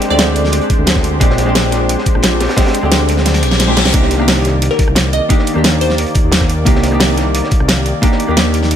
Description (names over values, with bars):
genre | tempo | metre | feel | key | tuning
liquid drum and bass | 176 BPM | 4/4 | straight | C minor | A4 = 440 Hz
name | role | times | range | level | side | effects
vintage hollow-body jazz guitar | accompaniment | 0.0-8.8 s | Ab3 to G4 | -18 LUFS | right 1 dB | dub echo
warm analog pad | sustained chords | 0.0-8.8 s | Eb3 to D5 | -21 LUFS | left 2 dB | wide subtle chorus, sidechain pumping
crunchy breakbeat drum kit | drums | 0.0-8.8 s | hi-hat, snare drum | -22 LUFS | equal | high-pass filter on hats, high-pass filter on snare, high-pass filter on room
pop drum kit | drums | 0.0-8.8 s | hi-hat, rim click, snare drum | -16 LUFS | equal | none
glassy wavetable pluck | melody | 0.1-0.6, 4.7-6.2 s | Bb4 to Eb5 | -21 LUFS | equal | chorus, tape echo
dark detuned saw bass | bass | 0.1-8.8 s | Bb1 to Eb2 | -16 LUFS | equal | none
electronic kick drum | drums | 0.7-8.1 s | none | -14 LUFS | equal | overdrive
reverse cymbal | sound effects | 3.4-3.9 s | none | -21 LUFS | left 4 dB | none
room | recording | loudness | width
light reverb | none | -10 LUFS | side -9 dB against mid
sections
0.0-8.8 A section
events
kick drops out 3.3-3.9; drum fill 3.3-3.9; reverse cymbal 3.4-3.9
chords
0.0 Bb13; 3.9 Cm9